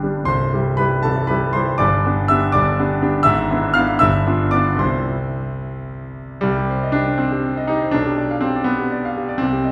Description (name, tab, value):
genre	classical, romantic character piece for solo piano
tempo	72-83 BPM (dotted quarters)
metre	6/8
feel	rubato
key	C major, C minor from 6.4 s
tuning	A4 = 442 Hz
part	bright concert grand piano	solo	0.0-9.7 s	C1 to F6	-19 LUFS	equal	none
room	wet recital hall reverb, RT60 1.8 s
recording	heard from further back in the room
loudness	-19 LUFS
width	mono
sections	0.0-6.4 A section; 6.4-9.7 B section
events	none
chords	0.3 C; 1.8 G; 3.3 E7/G#; 4.0 G7; 4.8 C; 6.4 Cm; 7.9 G7/B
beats	| 0.27 1.03 | 1.79 2.53 | 3.26 4.01 | 4.80 5.61 | 6.43 7.20 | 7.94 8.66 | 9.40